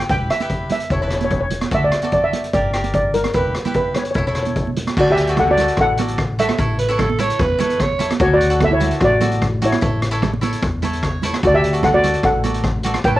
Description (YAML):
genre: calypso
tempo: 148 BPM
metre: 4/4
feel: straight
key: D major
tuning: A4 = 440 Hz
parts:
  - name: steel pan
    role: melody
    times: 0.0-13.2 s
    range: E4 to A5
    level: -18 LUFS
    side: equal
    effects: cassette tape
  - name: street-band drum kit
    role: drums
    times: 0.0-13.1 s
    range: crash cymbal, hi-hat, kick drum, rim click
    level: -22 LUFS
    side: left 1 dB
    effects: none
  - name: cavaquinho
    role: accompaniment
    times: 0.1-13.2 s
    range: E4 to D5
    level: -26 LUFS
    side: equal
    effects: cassette tape
  - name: upright bass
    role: bass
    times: 0.1-13.2 s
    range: E1 to E2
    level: -23 LUFS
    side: left 1 dB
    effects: none
  - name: congas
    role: percussion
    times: 0.4-13.0 s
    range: none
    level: -25 LUFS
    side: right 6 dB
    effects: none
  - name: raspy alto saxophone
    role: second line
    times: 6.8-8.1 s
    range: A4 to C#5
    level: -20 LUFS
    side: right 4 dB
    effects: cassette tape
room: moderate studio ambience, RT60 0.5 s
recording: home recording on cassette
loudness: -15 LUFS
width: side -15 dB against mid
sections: 0.0-5.0 A section; 5.0-13.2 B section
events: cavaquinho fill 10.8-11.4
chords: 0.1 Em; 0.9 A/E; 1.7 D; 2.5 Gm; 3.3 Em; 4.2 A/E; 5.0 D; 6.6 Aadd9; 8.2 D; 9.8 A; 11.4 D